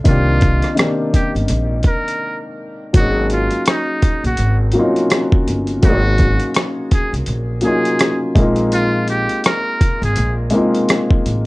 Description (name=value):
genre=lo-fi hip hop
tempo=83 BPM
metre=4/4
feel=swing 60% on 16ths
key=unclear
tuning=A4 = 440 Hz
part: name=felt-muted upright piano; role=accompaniment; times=0.0-11.5 s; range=Eb3 to Ab4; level=-19 LUFS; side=left 1 dB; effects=cassette tape, low-pass filter, plate reverb
part: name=upright bass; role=bass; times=0.0-11.5 s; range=G1 to C2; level=-18 LUFS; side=equal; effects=none
part: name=trumpet with metal mute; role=melody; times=0.1-10.4 s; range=Eb4 to Bb4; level=-22 LUFS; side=equal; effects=low-pass filter, plate reverb
part: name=dusty soul sampler-style drum kit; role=drums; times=0.1-11.5 s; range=hi-hat, kick drum, rim click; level=-16 LUFS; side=equal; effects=overdrive, vintage 12-bit sampler grit
room=light reverb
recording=none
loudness=-14 LUFS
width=side -22 dB against mid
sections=0.0-2.9 A section; 2.9-11.5 B section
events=break 2.2-2.9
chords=0.0 Cm9; 2.9 Ab9sus4; 8.4 Bb9sus4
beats=| 0.04 0.77 1.49 2.21 | 2.94 3.66 4.38 5.11 | 5.83 6.55 7.27 8.00 | 8.72 9.44 10.16 10.89